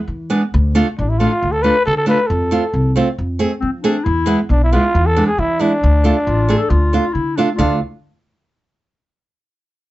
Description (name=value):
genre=klezmer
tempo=136 BPM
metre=4/4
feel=straight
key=D dorian sharp4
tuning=A4 = 439 Hz
part: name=upright bass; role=bass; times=0.1-7.8 s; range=A1 to F3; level=-17 LUFS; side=equal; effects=none
part: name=nylon-string guitar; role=accompaniment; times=0.3-7.8 s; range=G#3 to G#4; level=-17 LUFS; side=right 2 dB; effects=none
part: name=growling cornet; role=melody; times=1.0-7.8 s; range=D4 to B4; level=-18 LUFS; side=equal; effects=none
part: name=warm clarinet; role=second line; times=3.6-7.8 s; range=C4 to A4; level=-20 LUFS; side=left 3 dB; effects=none
room=light reverb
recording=nothing above 7.9 kHz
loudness=-14 LUFS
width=side -16 dB against mid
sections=0.0-7.6 A section; 7.6-9.3 B section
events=none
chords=0.0 E; 0.5 Dm; 2.3 F; 4.1 E; 5.8 Dm